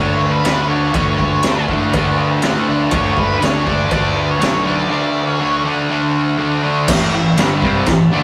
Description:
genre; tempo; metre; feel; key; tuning
garage rock duo or trio; 121 BPM; 4/4; straight; unclear; A4 = 440 Hz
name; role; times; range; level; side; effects
octave-fuzz lead guitar; melody; 0.0-5.6 s; B4 to D5; -23 LUFS; equal; distortion
fuzz guitar; riff; 0.0-8.2 s; G2 to D4; -18 LUFS; equal; distortion
fuzz fingered electric bass; bass; 0.0-8.2 s; G1 to A2; -26 LUFS; equal; overdrive
raw garage drum kit; drums; 0.4-8.0 s; crash cymbal, kick drum, snare drum; -21 LUFS; equal; none
room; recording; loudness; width
moderate studio reverb, RT60 0.6 s; rough rehearsal-room recording, warm saturation; -16 LUFS; mono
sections
0.0-6.9 A section; 6.9-8.2 B section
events
none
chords
0.0 D5; 6.9 A5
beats
0.45 | 0.95 1.45 1.94 2.44 | 2.93 3.43 3.92 4.42 | 4.91 5.41 5.90 6.40 | 6.89 7.39 7.88

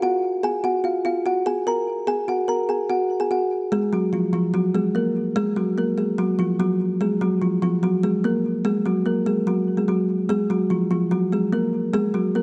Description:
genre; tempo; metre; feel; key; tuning
hip hop; 146 BPM; 4/4; half-time; F# major; A4 = 439 Hz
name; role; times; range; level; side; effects
kalimba; solo; 0.0-12.4 s; E#3 to A#5; -22 LUFS; equal; low-pass filter
room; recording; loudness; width
light reverb, small room ambience; nothing above 10.4 kHz; -22 LUFS; mono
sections
0.0-3.7 A section; 3.7-12.4 B section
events
none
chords
0.0 F#maj9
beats
0.02 | 0.43 0.84 1.25 1.66 | 2.07 2.48 2.90 3.31 | 3.72 4.13 4.54 4.95 | 5.36 5.77 6.18 6.59 | 7.00 7.42 7.83 8.24 | 8.65 9.06 9.47 9.88 | 10.29 10.70 11.12 11.53 | 11.94 12.35

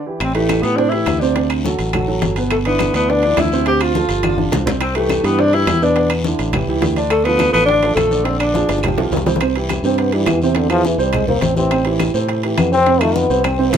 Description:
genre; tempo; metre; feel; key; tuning
Afro-Cuban jazz; 208 BPM; 4/4; straight; A minor, C major from 9.4 s; A4 = 442 Hz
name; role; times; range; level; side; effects
breathy tenor saxophone; melody; 0.0-8.9 s; A3 to G4; -17 LUFS; left 1 dB; none
warm trombone; second line; 0.0, 9.9-13.8 s; C3 to B#3; -18 LUFS; left 3 dB; none
warm grand piano; accompaniment; 0.1-13.8 s; B2 to D5; -19 LUFS; right 4 dB; none
modern bright fingered electric bass; bass; 0.2-13.8 s; G1 to A2; -21 LUFS; left 1 dB; none
bongos; percussion; 0.2-13.8 s; none; -26 LUFS; left 6 dB; none
claves; percussion; 0.2-13.6 s; none; -31 LUFS; left 3 dB; none
congas; percussion; 0.2-13.8 s; none; -25 LUFS; left 2 dB; none
guiro; percussion; 0.2-13.8 s; none; -33 LUFS; left 4 dB; none
timbales; percussion; 0.2-13.8 s; none; -26 LUFS; right 6 dB; none
room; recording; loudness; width
light reverb; minimal, uncompressed stereo recording; -14 LUFS; side -8 dB against mid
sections
0.2-9.4 A section; 9.4-13.8 B section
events
break 0.0; drum fill 4.2-4.8, 8.7-9.4, 13.4-13.8; trombone solo 9.4-13.8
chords
0.2 Am7; 1.4 D7; 2.5 G6; 3.7 Dm7; 4.2 G5; 4.8 Cmaj7; 6.0 E5; 6.5 A7; 7.1 Dm; 8.3 Bb7; 8.8 G7; 9.4 C; 10.6 Eaug; 11.7 Am7; 12.9 F5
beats
| 0.20 0.49 0.78 1.07 | 1.36 1.65 1.93 2.22 | 2.51 2.80 3.08 3.37 | 3.66 3.95 4.24 4.52 | 4.81 5.10 5.38 5.67 | 5.96 6.25 6.54 6.82 | 7.11 7.40 7.68 7.97 | 8.26 8.55 8.84 9.12 | 9.41 9.70 9.99 10.28 | 10.56 10.85 11.14 11.43 | 11.72 12.00 12.29 12.58 | 12.87 13.16 13.44 13.73

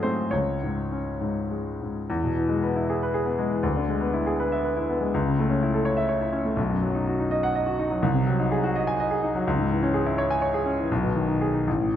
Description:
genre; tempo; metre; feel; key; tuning
classical, romantic character piece for solo piano; 65-86 BPM (dotted quarters); 6/8; rubato; E major; A4 = 439 Hz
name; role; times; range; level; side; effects
clear grand piano; solo; 0.0-12.0 s; A1 to G#5; -22 LUFS; left 1 dB; none
room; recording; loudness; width
moderate scoring stage reverb, RT60 1.8 s; close, detailed microphones; -22 LUFS; side -10 dB against mid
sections
0.0-2.1 A section; 2.1-12.0 B section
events
none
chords
0.3 C#5; 2.1 E; 3.6 E7/D; 5.1 A/C#; 6.6 B; 8.0 G#7/B#; 9.5 C#m; 10.9 G#m/B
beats
| 0.32 1.21 | 2.09 2.88 | 3.62 4.39 | 5.14 5.86 | 6.58 7.31 | 8.03 8.75 | 9.46 10.18 | 10.91 11.68

